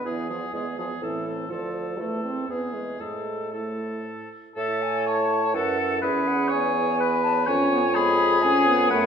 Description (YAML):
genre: quick classical-period movement for wind quintet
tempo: 114-128 BPM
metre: 3/4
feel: rubato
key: A minor, A major from 4.6 s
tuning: A4 = 441 Hz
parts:
  - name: mellow hollow silver concert flute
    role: melody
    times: 0.0-9.1 s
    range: B4 to B5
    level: -28 LUFS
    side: left 6 dB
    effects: none
  - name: warm oboe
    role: second line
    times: 0.0-9.1 s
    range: G#4 to C#5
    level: -27 LUFS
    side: left 1 dB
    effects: none
  - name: mellow clarinet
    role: accompaniment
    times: 0.0-9.1 s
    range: B3 to C#5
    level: -32 LUFS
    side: right 6 dB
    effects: none
  - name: clear French horn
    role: accompaniment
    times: 0.1-9.1 s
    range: E3 to E4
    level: -30 LUFS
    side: right 1 dB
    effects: none
  - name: dark bassoon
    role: bass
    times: 0.1-9.1 s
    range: D2 to A2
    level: -28 LUFS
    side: right 2 dB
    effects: none
room: wet recital hall reverb, RT60 1.3 s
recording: recorded in a church or concert hall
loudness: -22 LUFS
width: side -7 dB against mid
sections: 0.0-4.6 A section; 4.6-9.1 A section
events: none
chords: 0.1 E7; 1.0 Am; 1.5 Dm; 2.0 Am/E; 2.5 E; 3.0 Am; 4.6 A; 6.0 E; 7.5 C#7/E#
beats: | 0.06 0.53 1.02 | 1.50 1.99 2.49 | 3.00 3.53 4.05 | 4.57 5.07 5.55 | 6.03 6.52 7.00 | 7.48 7.96 8.43 | 8.90